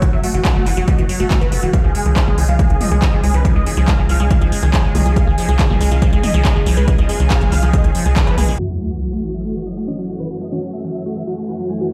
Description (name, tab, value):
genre	uplifting trance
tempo	140 BPM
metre	4/4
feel	straight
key	F# dorian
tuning	A4 = 436 Hz
part	big supersaw lead	melody	0.0-11.9 s	F#4 to G#5	-27 LUFS	equal	phaser, sidechain pumping, low-pass filter, digital delay
part	liquid acid bass	arpeggios	0.0-11.9 s	D#3 to A3	-26 LUFS	equal	phaser, lush chorus, sidechain pumping, digital delay
part	electronic kick drum	drums	0.0-8.2 s	none	-18 LUFS	equal	none
part	techno drum kit	drums	0.0-8.6 s	handclaps, hi-hat, toms	-26 LUFS	equal	overdrive
part	tight sequencer bass	bass	0.1-8.6 s	E1 to C#2	-18 LUFS	equal	sidechain pumping
part	lush unison pad	sustained chords	1.7-11.9 s	F#2 to G#5	-32 LUFS	equal	chorus, sidechain pumping
part	felt-muted upright piano	second line	8.6-11.9 s	C#4 to F#4	-33 LUFS	equal	digital delay
part	sub drop	sound effects	8.6-10.3 s	none	-28 LUFS	equal	none
room	digital ambience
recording	played on a big sound system in a bare room, large studio reverb, low-pass filter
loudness	-16 LUFS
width	mono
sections	0.0-8.6 A section; 8.6-11.9 B section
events	band accent 8.2; impact 8.6-10.3; filter sweep on supersaw synth 8.6-11.9; filter sweep on acid bass 8.6-11.9; filter sweep 8.6-11.9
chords	0.0 F#m7; 1.7 C#add9; 8.6 F#m7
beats	| 0.02 0.45 0.88 1.31 | 1.74 2.16 2.59 3.02 | 3.45 3.88 4.31 4.74 | 5.16 5.59 6.02 6.45 | 6.88 7.31 7.74 8.16 | 8.59 9.02 9.45 9.88 | 10.31 10.73 11.16 11.59